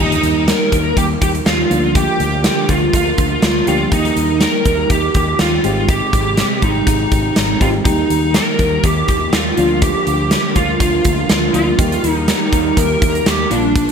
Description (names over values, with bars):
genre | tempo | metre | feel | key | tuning
1980s-style pop | 122 BPM | 4/4 | swing 55% on 16ths | Eb major | A4 = 440 Hz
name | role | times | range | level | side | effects
lead guitar through a small cranked amp | melody | 0.0-13.9 s | D4 to Bb4 | -17 LUFS | right 1 dB | overdrive, analog chorus
FM electric piano with auto-pan | accompaniment | 0.0-13.9 s | F3 to G4 | -24 LUFS | left 2 dB | none
lush unison pad | sustained chords | 0.0-13.9 s | C3 to G4 | -23 LUFS | equal | chorus
vintage muted fingered electric bass | bass | 0.0-13.9 s | Ab1 to Eb2 | -21 LUFS | equal | none
huge arena drum kit | drums | 0.1-13.9 s | hi-hat, kick drum, snare drum | -17 LUFS | equal | gated reverb
room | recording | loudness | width
moderate plate reverb, RT60 1.3 s, studio reverb | bright 1980s-style digital production | -12 LUFS | side -6 dB against mid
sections
0.0-13.9 A section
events
none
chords
0.0 Eb; 1.7 Bb/D; 3.9 Eb; 5.6 Abmaj7; 7.9 Eb; 9.6 Bb/D; 11.8 Eb